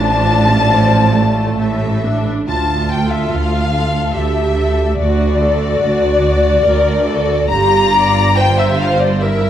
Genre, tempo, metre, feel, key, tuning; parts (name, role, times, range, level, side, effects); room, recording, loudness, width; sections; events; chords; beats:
classical, slow romantic movement for string orchestra; 65-74 BPM; 3/4; rubato; D minor; A4 = 440 Hz
warm symphonic violin section; melody; 0.0-9.5 s; E4 to A5; -21 LUFS; left 4 dB
warm symphonic violin section; second line; 0.0-9.5 s; F4 to Bb5; -17 LUFS; left 3 dB
warm chamber viola section; accompaniment; 0.0-9.5 s; F3 to D5; -20 LUFS; right 2 dB
rich chamber cello section; bass; 0.0-9.5 s; D2 to A2; -18 LUFS; right 2 dB
warm chamber double bass section; bass; 0.0-9.5 s; G1 to D2; -18 LUFS; right 2 dB
moderate concert hall reverb, RT60 1.9 s; dark, warm production; -12 LUFS; side -10 dB against mid
0.0-2.5 A section; 2.5-9.5 B section
0.0 Dm/A; 1.6 A5; 2.5 Dm; 5.0 D; 7.5 Gm7
0.67 1.59 | 2.48 3.32 4.15 | 4.98 5.81 6.63 | 7.50 8.35 9.21